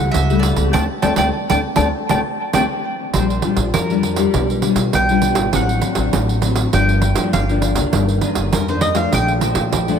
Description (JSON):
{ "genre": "samba and choro", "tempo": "100 BPM", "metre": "4/4", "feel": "straight", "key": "Bb major from 3.1 s", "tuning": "A4 = 436 Hz", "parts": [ { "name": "mandolin", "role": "melody", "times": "0.0-9.3 s", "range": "Bb4 to A5", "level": "-22 LUFS", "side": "right 1 dB", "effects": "analog delay" }, { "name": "nylon-string guitar", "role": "accompaniment", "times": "0.0-10.0 s", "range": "F2 to G4", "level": "-20 LUFS", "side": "left 5 dB", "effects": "ensemble chorus" }, { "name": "upright bass", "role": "bass", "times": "0.0-10.0 s", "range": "G1 to B2", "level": "-20 LUFS", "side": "equal", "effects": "none" }, { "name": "pandeiro", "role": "percussion", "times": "0.1-10.0 s", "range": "none", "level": "-21 LUFS", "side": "right 7 dB", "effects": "none" } ], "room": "moderate plate reverb, RT60 3.2 s", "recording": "dreamy mix soaked in reverb", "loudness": "-15 LUFS", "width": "side -7 dB against mid", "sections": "0.0-3.1 A section; 3.1-10.0 B section", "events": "band accent 0.7-3.1; mandolin solo 3.1-10.0", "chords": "0.0 A7/C#; 0.7 D7sus4; 3.1 Bb6; 4.3 G7/B; 5.5 D7/A; 6.7 Gm7; 7.9 Ebmaj7/G; 9.1 Bbmaj7", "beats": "0.14 | 0.74 1.34 1.94 2.54 | 3.14 3.74 4.34 4.94 | 5.54 6.14 6.74 7.33 | 7.93 8.53 9.13 9.73" }